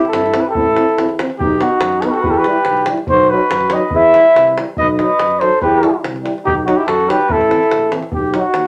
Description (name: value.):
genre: balkan folk, Balkan brass band.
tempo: 142 BPM.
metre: 2/4.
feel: straight.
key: unclear.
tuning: A4 = 440 Hz.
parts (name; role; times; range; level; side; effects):
dark trumpet; melody; 0.0-8.7 s; F#4 to E5; -16 LUFS; equal; none.
warm flugelhorn; second line; 0.0-7.9 s; D#4 to B4; -22 LUFS; equal; none.
clear euphonium; accompaniment; 0.1-8.4 s; C4 to E4; -24 LUFS; equal; none.
warm euphonium; accompaniment; 0.1-8.4 s; E3 to C4; -26 LUFS; equal; none.
mellow tuba; bass; 0.1-8.7 s; A1 to G2; -24 LUFS; equal; none.
davul; percussion; 0.1-8.6 s; none; -26 LUFS; equal; none.
room: wet studio reverb, RT60 0.5 s.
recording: none.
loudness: -14 LUFS.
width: mono.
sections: 0.0-1.4 A section; 1.4-8.1 B section.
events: none.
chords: 0.0 C; 0.6 Am; 1.4 B; 2.2 Em; 3.1 B; 3.9 Em; 4.8 B; 5.6 Em; 6.5 B; 7.3 Am; 8.1 B.